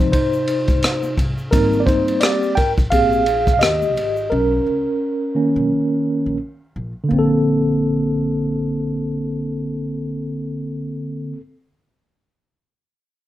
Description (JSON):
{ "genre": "hip hop, jazz-hop", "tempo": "86 BPM", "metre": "4/4", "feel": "swing 57% on 16ths", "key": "Bb major", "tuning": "A4 = 440 Hz", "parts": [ { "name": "mellow tine electric piano", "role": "accompaniment", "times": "0.0-11.4 s", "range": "C3 to G5", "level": "-18 LUFS", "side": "equal", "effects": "medium stereo tremolo" }, { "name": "upright bass", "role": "bass", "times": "0.0-11.4 s", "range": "Ab1 to Eb2", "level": "-28 LUFS", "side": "equal", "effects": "none" }, { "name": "crunchy breakbeat drum kit", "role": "drums", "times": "0.1-4.2 s", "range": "hi-hat, kick drum, ride cymbal, rim click", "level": "-20 LUFS", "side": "equal", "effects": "none" }, { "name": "congas and egg shaker", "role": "percussion", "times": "0.1-4.3 s", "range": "none", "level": "-38 LUFS", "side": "left 2 dB", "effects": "none" } ], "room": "wet small room reverb, RT60 0.6 s", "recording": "rough home demo mix", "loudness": "-17 LUFS", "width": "side -14 dB against mid", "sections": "0.0-7.1 A section; 7.1-9.9 B section", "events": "tine electric piano solo 0.0-7.1", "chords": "0.0 Dbmaj7sus2 (rootless); 1.5 Abmaj9; 4.3 Bmaj9; 7.1 Bbmaj9" }